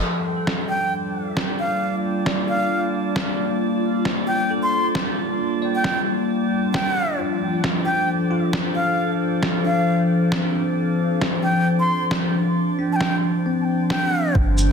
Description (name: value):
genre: future garage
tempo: 134 BPM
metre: 4/4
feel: swing 60% on 16ths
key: G minor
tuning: A4 = 435 Hz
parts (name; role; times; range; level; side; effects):
- wooden flute; melody; 0.0-14.4 s; F5 to C6; -25 LUFS; equal; dub echo
- bell-like tine electric piano; accompaniment; 0.0-14.7 s; C4 to D5; -30 LUFS; left 1 dB; wide subtle chorus, sidechain pumping, ping-pong delay
- warbly tape-like pad; sustained chords; 0.0-14.7 s; F3 to C5; -22 LUFS; left 1 dB; chorus, built-in reverb, sidechain pumping
- drifting glass-harmonics texture; texture; 0.7-14.4 s; D4 to D5; -32 LUFS; right 4 dB; chorus, built-in reverb
- electronic snare drum and shaker; drums; 0.5-14.7 s; none; -26 LUFS; equal; none
- soft dub sub bass; bass; 14.3-14.7 s; G1; -19 LUFS; equal; sidechain pumping
- electronic kick drum; drums; 14.4-14.5 s; none; -19 LUFS; equal; none
room: wet recital hall reverb, RT60 1.5 s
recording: dense, heavily limited modern master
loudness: -19 LUFS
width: side -6 dB against mid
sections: 0.0-14.4 A section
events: none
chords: 0.0 Gm7; 7.2 Dm7/F